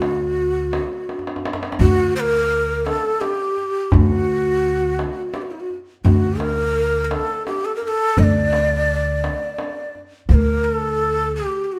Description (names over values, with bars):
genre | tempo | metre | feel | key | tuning
Persian modal ensemble | 57 BPM (dotted quarters) | 6/8 | straight | D dastgah homayun | A4 = 438 Hz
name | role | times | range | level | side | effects
breathy ney | melody | 0.0-11.8 s | E4-49c to Eb5 | -22 LUFS | equal | none
upright bass | bass | 0.0-11.4 s | D2 | -23 LUFS | equal | none
tombak | percussion | 0.0-10.0 s | none | -24 LUFS | equal | none
room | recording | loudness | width
wet stone room reverb, RT60 1.1 s | band playing live in one room | -20 LUFS | mono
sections
0.0-10.3 A section; 10.3-11.8 B section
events
drum fill 1.1-1.8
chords
none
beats
0.74 | 1.81 2.87 | 3.93 4.99 | 6.05 7.11 | 8.17 9.23 | 10.29 11.35